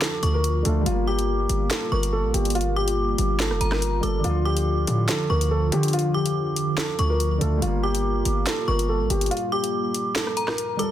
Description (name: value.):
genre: hip hop, drill.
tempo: 142 BPM.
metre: 4/4.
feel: half-time.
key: unclear.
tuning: A4 = 444 Hz.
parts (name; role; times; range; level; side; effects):
dark concert grand piano; melody; 0.0-10.9 s; F4 to Bb4; -27 LUFS; left 1 dB; ping-pong delay.
metallic FM bell; second line; 0.0-10.9 s; Bb5 to D6; -31 LUFS; equal; chorus, ping-pong delay.
felt-muted upright piano; accompaniment; 0.0-10.9 s; D3 to Bb4; -31 LUFS; left 1 dB; none.
dark analog pad; sustained chords; 0.0-10.9 s; D3 to F4; -30 LUFS; equal; chorus, phaser.
hard-hitting 808-style bass; bass; 0.0-9.3 s; F1 to D3; -24 LUFS; equal; none.
drill drum kit; drums; 0.0-10.9 s; handclaps, hi-hat, rim click, snare drum; -28 LUFS; equal; none.
room: little or no reverb.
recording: dense, heavily limited modern master.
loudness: -21 LUFS.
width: side -11 dB against mid.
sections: 0.0-10.9 A section.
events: kick muted 9.3-10.9.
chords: 0.0 Dm; 0.9 Gm7; 4.2 Dm; 7.6 Gm7.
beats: 0.02 0.44 | 0.86 1.28 1.71 2.13 | 2.55 2.97 3.40 3.82 | 4.24 4.66 5.09 5.51 | 5.93 6.35 6.78 7.20 | 7.62 8.04 8.47 8.89 | 9.31 9.73 10.16 10.58.